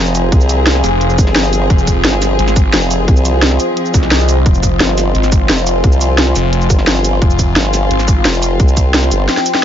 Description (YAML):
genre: dark technical drum and bass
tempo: 174 BPM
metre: 4/4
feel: straight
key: F minor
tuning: A4 = 440 Hz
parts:
  - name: dark chamber string section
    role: sustained chords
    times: 0.0-9.6 s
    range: F3 to Ab4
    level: -20 LUFS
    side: left 3 dB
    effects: sidechain pumping
  - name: formant-sweep wobble bass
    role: bass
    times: 0.0-9.3 s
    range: F1 to C2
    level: -14 LUFS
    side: equal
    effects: chorus
  - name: deep dark ambient pad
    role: texture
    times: 0.0-9.6 s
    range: F4 to Ab5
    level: -19 LUFS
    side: equal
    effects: chorus, built-in reverb, sidechain pumping
  - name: drum and bass drum kit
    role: drums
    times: 0.1-9.6 s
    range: hi-hat, shaker, snare drum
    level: -16 LUFS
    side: equal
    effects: none
  - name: electronic kick drum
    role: drums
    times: 0.3-8.8 s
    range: none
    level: -11 LUFS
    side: equal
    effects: overdrive
  - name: phased detuned saw bass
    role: bass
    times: 0.8-8.2 s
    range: F1 to C2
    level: -15 LUFS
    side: equal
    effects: phaser, overdrive, sidechain pumping
room: little or no reverb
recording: nothing above 7.5 kHz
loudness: -10 LUFS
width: side -10 dB against mid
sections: 0.0-9.6 A section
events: drum fill 9.3-9.6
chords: 0.0 Fm